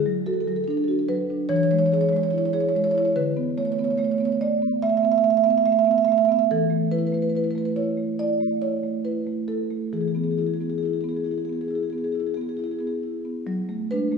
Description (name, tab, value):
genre	classical, contemporary piece for solo marimba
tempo	70 BPM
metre	4/4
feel	uneven beats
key	unclear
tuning	A4 = 441 Hz
part	marimba with soft mallets	solo	0.0-14.2 s	D3 to E5	-21 LUFS	right 2 dB	none
room	wet recital hall reverb, RT60 1.6 s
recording	heard from further back in the room, studio reverb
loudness	-21 LUFS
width	side -5 dB against mid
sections	0.0-13.4 A section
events	none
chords	0.0 D; 1.5 E; 3.2 Dsus2; 6.5 Esus4; 9.9 E; 13.4 F#m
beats	0.68 1.50 2.33 | 3.16 3.99 4.82 5.66 | 6.50 7.34 8.18 9.04 | 9.91 10.80 11.69 12.57 | 13.44